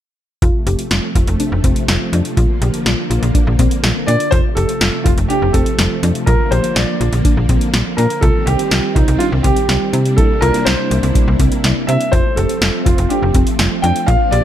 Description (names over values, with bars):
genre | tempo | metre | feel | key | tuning
synth-pop | 123 BPM | 4/4 | straight | unclear | A4 = 440 Hz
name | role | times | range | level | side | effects
string machine, violas | sustained chords | 0.4-14.4 s | C3 to E4 | -21 LUFS | equal | ensemble chorus
soft round pluck | arpeggios | 0.4-14.4 s | C4 to G4 | -24 LUFS | left 4 dB | chorus, ping-pong delay
slap-like FM bass | bass | 0.4-14.4 s | F1 to C3 | -16 LUFS | equal | none
electro analog drum machine | drums | 0.4-14.4 s | hi-hat, kick drum, snare drum | -16 LUFS | equal | none
warm concert grand piano | melody | 4.1-14.4 s | Eb4 to G5 | -18 LUFS | right 1 dB | ping-pong delay
room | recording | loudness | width
little or no reverb | none | -12 LUFS | side -11 dB against mid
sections
0.4-4.3 A section; 4.3-14.4 B section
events
none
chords
0.4 F; 2.4 Bb; 4.3 F; 6.3 Bb; 8.2 Cm; 9.9 C7; 12.1 F